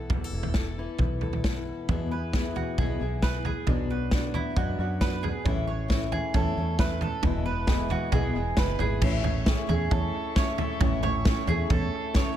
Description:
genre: indie folk with a building arrangement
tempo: 134 BPM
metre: 4/4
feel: straight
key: A major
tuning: A4 = 440 Hz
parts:
  - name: fingerpicked steel-string acoustic guitar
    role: accompaniment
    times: 0.0-3.7 s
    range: E2 to A4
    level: -38 LUFS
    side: left 4 dB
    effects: dub echo
  - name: fingered electric bass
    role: bass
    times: 0.0-11.9 s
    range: E1 to F#2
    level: -30 LUFS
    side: equal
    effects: none
  - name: natural country drum kit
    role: drums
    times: 0.1-12.3 s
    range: crash cymbal, kick drum, snare drum, toms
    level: -27 LUFS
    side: equal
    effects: none
  - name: dark upright piano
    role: accompaniment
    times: 1.9-12.4 s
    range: A1 to E5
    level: -35 LUFS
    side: right 6 dB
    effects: dub echo
  - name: picked acoustic archtop guitar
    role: accompaniment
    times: 1.9-12.4 s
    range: E2 to G#4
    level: -34 LUFS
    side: left 8 dB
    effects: none
  - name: mandolin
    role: arpeggios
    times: 2.1-12.4 s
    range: E4 to C#5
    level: -33 LUFS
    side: right 5 dB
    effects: dub echo
  - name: warm chamber string section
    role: sustained chords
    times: 9.0-12.4 s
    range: A3 to C#6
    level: -38 LUFS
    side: left 5 dB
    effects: none
room: studio ambience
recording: echo-heavy mix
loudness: -24 LUFS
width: side -11 dB against mid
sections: 0.0-1.9 A section; 1.9-9.0 B section; 9.0-12.4 C section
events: none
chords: 0.0 Esus4; 1.9 E; 3.7 Bm; 5.5 A; 7.2 E; 9.0 A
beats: | 0.11 0.56 1.00 1.45 | 1.90 2.34 2.79 3.23 | 3.68 4.12 4.57 5.01 | 5.46 5.90 6.35 6.79 | 7.24 7.69 8.13 8.58 | 9.02 9.47 9.92 10.36 | 10.81 11.26 11.70 12.15

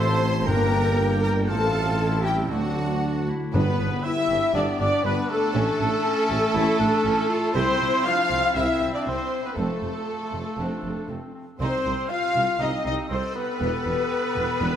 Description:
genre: cinematic, heroic adventure film score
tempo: 119 BPM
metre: 4/4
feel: straight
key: G mixolydian from 3.5 s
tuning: A4 = 440 Hz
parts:
  - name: clear studio violin section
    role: melody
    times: 0.0-14.8 s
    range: A4 to C6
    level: -31 LUFS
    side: left 2 dB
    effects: none
  - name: bright clarinet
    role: second line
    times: 0.0-14.8 s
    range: A3 to A4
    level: -33 LUFS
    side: equal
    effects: none
  - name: mellow cor anglais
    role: second line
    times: 0.0-14.8 s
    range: A3 to A5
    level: -34 LUFS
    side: right 1 dB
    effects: none
  - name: mellow hollow concert flute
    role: second line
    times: 0.0-14.8 s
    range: A4 to C6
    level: -34 LUFS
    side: left 2 dB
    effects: none
  - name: rich studio violin section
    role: second line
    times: 0.0-14.8 s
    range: G3 to C6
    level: -36 LUFS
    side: left 2 dB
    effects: none
  - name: warm studio viola section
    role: accompaniment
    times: 0.0-14.8 s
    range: A3 to F5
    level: -29 LUFS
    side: equal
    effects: none
  - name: mellow French horn section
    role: sustained chords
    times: 0.0-14.8 s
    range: F3 to F4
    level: -30 LUFS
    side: left 3 dB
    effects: none
  - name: warm trumpet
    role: stabs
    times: 0.0-14.8 s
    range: D4 to F5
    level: -31 LUFS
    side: right 1 dB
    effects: none
  - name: mellow tuba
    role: bass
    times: 0.0-14.7 s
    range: E1 to D2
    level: -31 LUFS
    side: right 3 dB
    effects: none
  - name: rich symphonic cello section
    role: bass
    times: 0.0-14.7 s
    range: C2 to C5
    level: -31 LUFS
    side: right 1 dB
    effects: none
  - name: rich symphonic double bass section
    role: bass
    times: 0.0-14.7 s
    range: E1 to D2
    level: -30 LUFS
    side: right 1 dB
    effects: none
  - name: timpani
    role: percussion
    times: 0.5-4.3 s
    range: G2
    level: -28 LUFS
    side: left 1 dB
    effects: none
room: wet scoring stage reverb, RT60 1.9 s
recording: none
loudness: -21 LUFS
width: side -9 dB against mid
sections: 0.0-3.5 A section; 3.5-14.8 B section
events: none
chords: 0.5 Gm; 1.5 F/A; 2.5 D7; 3.5 G; 5.6 A; 7.6 C; 9.6 F; 11.6 Cm; 13.6 Em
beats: 0.48 0.98 | 1.49 1.99 2.50 3.02 | 3.53 4.04 4.54 5.05 | 5.55 6.05 6.55 7.06 | 7.56 8.06 8.56 9.06 | 9.57 10.07 10.58 11.09 | 11.60 12.10 12.61 13.11 | 13.61 14.11 14.61

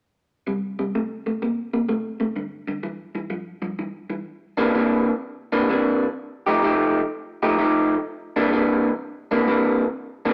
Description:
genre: blues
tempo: 126 BPM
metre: 4/4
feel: swing 66% on 8ths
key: C mixolydian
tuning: A4 = 441 Hz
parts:
  - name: electric guitar through a small old amp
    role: solo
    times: 0.5-10.3 s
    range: G2 to G4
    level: -23 LUFS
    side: equal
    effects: none
room: moderate large studio reverb, RT60 1.1 s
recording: none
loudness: -23 LUFS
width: mono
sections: 0.5-4.3 A section; 4.3-10.3 B section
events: none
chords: 0.5 C5; 2.4 G5; 4.3 C9; 6.2 F9; 8.1 C9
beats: | 0.47 0.94 1.42 1.89 | 2.37 2.84 3.31 3.79 | 4.26 4.74 5.21 5.69 | 6.16 6.63 7.11 7.58 | 8.06 8.53 9.01 9.48 | 9.96

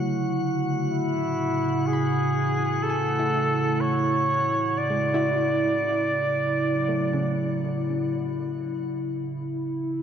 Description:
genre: ambient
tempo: 61 BPM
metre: 4/4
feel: straight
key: unclear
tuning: A4 = 438 Hz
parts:
  - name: warbly tape-like pad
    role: sustained chords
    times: 0.0-10.0 s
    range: A2 to E4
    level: -25 LUFS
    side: right 1 dB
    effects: chorus, built-in reverb
  - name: drifting glass-harmonics texture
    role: texture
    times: 0.0-8.8 s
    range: F#4 to F#5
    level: -35 LUFS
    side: left 4 dB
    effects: chorus, built-in reverb
  - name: clear flugelhorn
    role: melody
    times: 0.9-10.0 s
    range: E4 to D5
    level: -26 LUFS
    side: equal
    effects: tape echo
  - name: soft round pluck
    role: arpeggios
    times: 1.9-10.0 s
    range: C#3 to B5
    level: -33 LUFS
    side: equal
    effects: wide subtle chorus, tape echo
room: wet lush hall reverb, RT60 2.9 s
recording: none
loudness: -22 LUFS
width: side -8 dB against mid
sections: 0.0-8.8 A section; 8.8-10.0 B section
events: filter sweep on ambient pad 0.0-8.8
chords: 0.0 Dmaj9; 0.9 Amaj7; 4.8 Dmaj9; 8.8 N.C.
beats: | 0.91 1.87 2.83 3.80 | 4.78 5.76 6.76 7.77 | 8.77 9.76

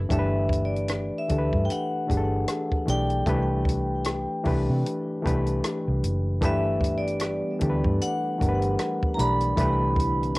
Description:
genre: R&B, neo-soul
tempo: 76 BPM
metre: 4/4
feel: swing 61% on 16ths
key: G major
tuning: A4 = 440 Hz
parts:
  - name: overdriven reed electric piano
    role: accompaniment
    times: 0.0-10.4 s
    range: Eb3 to D5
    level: -27 LUFS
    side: left 1 dB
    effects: cassette tape
  - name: hollow soft pad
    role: sustained chords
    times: 0.0-0.1, 6.4-10.4 s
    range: D3 to G4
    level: -35 LUFS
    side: right 1 dB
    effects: none
  - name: vintage muted fingered electric bass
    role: bass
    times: 0.0-10.4 s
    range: F#1 to C3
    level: -26 LUFS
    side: equal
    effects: none
  - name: vibraphone with hard mallets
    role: melody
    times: 0.1-10.4 s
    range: D5 to B5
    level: -29 LUFS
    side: equal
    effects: cassette tape, tape echo
  - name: compact cocktail drum kit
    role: drums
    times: 0.1-10.4 s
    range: hi-hat, kick drum, rim click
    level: -28 LUFS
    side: equal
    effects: cassette tape
room: light reverb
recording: home recording on cassette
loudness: -22 LUFS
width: side -22 dB against mid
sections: 0.1-10.4 A section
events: none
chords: 0.1 Gmaj9; 3.3 Cmaj9; 6.4 Gmaj9; 9.6 Cmaj9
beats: | 0.10 0.89 1.68 2.47 | 3.26 4.05 4.84 5.63 | 6.42 7.21 7.99 8.78 | 9.57 10.36

